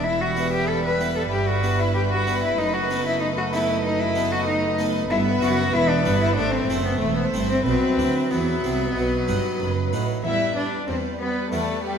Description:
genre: classical, baroque-style concerto movement with solo episodes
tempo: 94 BPM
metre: 4/4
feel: straight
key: E minor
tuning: A4 = 441 Hz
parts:
  - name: rich cello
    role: melody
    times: 0.0-12.0 s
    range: G3 to B4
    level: -24 LUFS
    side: left 2 dB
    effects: none
  - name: rich chamber violin section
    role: melody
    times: 0.0-12.0 s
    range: B4 to E5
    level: -33 LUFS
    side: left 7 dB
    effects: none
  - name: warm symphonic violin section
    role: second line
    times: 0.0-12.0 s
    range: G4 to E5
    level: -29 LUFS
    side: left 2 dB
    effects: none
  - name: harpsichord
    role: accompaniment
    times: 0.0-12.0 s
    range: E2 to F#4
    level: -30 LUFS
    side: equal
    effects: none
  - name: rich chamber viola section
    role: accompaniment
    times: 0.0-12.0 s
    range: F#3 to B3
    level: -29 LUFS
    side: equal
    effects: none
  - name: rich chamber cello section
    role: bass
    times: 0.0-12.0 s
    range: E2 to E3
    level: -28 LUFS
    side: right 4 dB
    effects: none
  - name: rich chamber double bass section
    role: bass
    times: 0.0-10.2 s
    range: E1 to E2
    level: -30 LUFS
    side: right 4 dB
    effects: none
room: moderate concert hall reverb, RT60 2.0 s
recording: minimal, uncompressed stereo recording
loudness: -20 LUFS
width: side -7 dB against mid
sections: 0.0-10.2 A section; 10.2-12.0 A section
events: none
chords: 0.0 Em; 1.3 Em/G; 2.6 B7/F#; 5.1 Em; 6.4 Am; 7.7 Bsus4; 9.0 B; 10.2 Em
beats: | 0.04 0.68 1.31 1.95 | 2.58 3.21 3.84 4.47 | 5.10 5.73 6.37 7.01 | 7.66 8.31 8.96 9.60 | 10.25 10.89 11.53

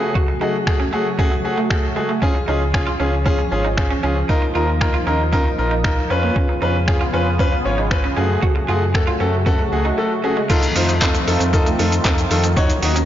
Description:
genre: dance-pop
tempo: 116 BPM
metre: 4/4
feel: straight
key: unclear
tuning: A4 = 440 Hz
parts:
  - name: bright grand piano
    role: accompaniment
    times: 0.0-13.0 s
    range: A3 to Eb5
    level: -21 LUFS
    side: left 1 dB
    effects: sidechain pumping
  - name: sweeping resonant pad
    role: sustained chords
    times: 0.0-13.1 s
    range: Db3 to Ab4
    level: -25 LUFS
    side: equal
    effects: chorus, tremolo, sidechain pumping
  - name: electric guitar at the edge of break-up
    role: riff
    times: 0.2-13.1 s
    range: Ab3 to Gb4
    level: -26 LUFS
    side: right 5 dB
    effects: wide subtle chorus
  - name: trip hop sampler-style drum kit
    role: drums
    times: 0.2-13.1 s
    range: crash cymbal, finger snaps, handclaps, hi-hat, kick drum, shaker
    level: -20 LUFS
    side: equal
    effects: soft clipping on snare
  - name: sub bass with octave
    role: bass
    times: 2.5-13.1 s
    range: Ab1 to Gb2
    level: -21 LUFS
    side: equal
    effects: sidechain pumping
  - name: group handclap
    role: percussion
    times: 11.0-12.2 s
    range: none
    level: barely audible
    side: none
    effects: none
room: moderate lush hall reverb, RT60 2.2 s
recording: blown-out, overdriven recording, overdrive, nothing above 7.5 kHz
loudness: -16 LUFS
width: side -11 dB against mid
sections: 0.0-10.5 A section; 10.5-13.1 B section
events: hi-hats muted 0.2-2.2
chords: 0.0 Gbmadd9; 2.2 Db; 4.3 Ebsus2; 6.1 Db7/F; 8.2 Gbmadd9; 10.5 F7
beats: | 0.15 0.67 1.19 1.71 | 2.22 2.74 3.26 3.77 | 4.29 4.81 5.33 5.84 | 6.36 6.88 7.39 7.91 | 8.43 8.95 9.46 9.98 | 10.50 11.02 11.53 12.05 | 12.57

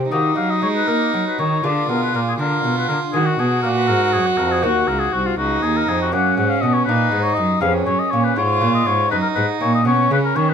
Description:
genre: classical, baroque-style sonata movement with continuo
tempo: 80 BPM (dotted quarters)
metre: 12/8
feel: straight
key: Eb minor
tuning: A4 = 440 Hz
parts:
  - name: warm violin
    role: second line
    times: 0.0-10.5 s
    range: Db4 to Gb4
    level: -21 LUFS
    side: right 4 dB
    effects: none
  - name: lute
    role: accompaniment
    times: 0.0-10.5 s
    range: Eb2 to Ab4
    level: -25 LUFS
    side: left 3 dB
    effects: none
  - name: rich cello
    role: bass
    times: 0.0-10.5 s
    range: C2 to Bb3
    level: -21 LUFS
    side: right 2 dB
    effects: none
  - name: warm oboe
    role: melody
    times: 0.1-10.5 s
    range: F4 to Gb5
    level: -20 LUFS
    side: left 5 dB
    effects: none
room: moderate studio ambience, RT60 0.4 s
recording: minimal, uncompressed stereo recording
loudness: -16 LUFS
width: side -7 dB against mid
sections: 0.1-10.5 A section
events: none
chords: 0.1 Ebm; 1.6 Bb7; 3.1 Ebm; 6.1 Gb; 7.6 Db7/F; 9.1 Gb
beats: | 0.11 0.88 1.64 2.39 | 3.14 3.89 4.64 5.39 | 6.14 6.88 7.62 8.37 | 9.11 9.86

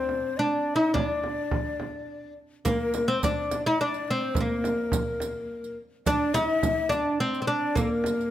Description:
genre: Arabic maqam ensemble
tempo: 106 BPM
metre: 3/4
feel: straight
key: unclear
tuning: A4 = 440 Hz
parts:
  - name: oud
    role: melody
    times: 0.0-8.3 s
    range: Bb3 to E4-50c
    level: -26 LUFS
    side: equal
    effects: none
  - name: breathy ney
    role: second line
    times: 0.0-8.3 s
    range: Bb4 to E5-47c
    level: -31 LUFS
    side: left 5 dB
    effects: none
  - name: frame drum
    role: percussion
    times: 0.1-8.2 s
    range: none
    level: -31 LUFS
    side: right 2 dB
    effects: none
  - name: riq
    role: percussion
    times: 2.7-8.3 s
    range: none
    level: -35 LUFS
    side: right 6 dB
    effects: none
room: light reverb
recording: close, detailed microphones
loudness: -24 LUFS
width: side -12 dB against mid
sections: 0.0-2.7 A section; 2.7-8.3 B section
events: none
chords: none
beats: 0.38 | 0.95 1.52 2.08 | 2.65 3.22 3.79 | 4.36 4.93 5.50 | 6.07 6.63 7.20 | 7.77

